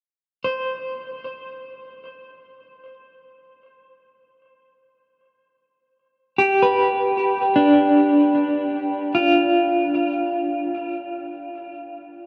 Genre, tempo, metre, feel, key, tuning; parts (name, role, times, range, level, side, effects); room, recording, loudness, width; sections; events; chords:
ambient; free time; D dorian; A4 = 438 Hz
clean electric guitar; arpeggios; 0.4-11.6 s; D4 to C5; -21 LUFS; equal; tremolo, tape echo
wet huge ambient reverb, RT60 7.5 s; dark, warm production; -20 LUFS; mono
0.0-12.3 A section
fade-in on clean electric guitar 0.0-12.3
0.0 N.C.; 6.0 Dmadd11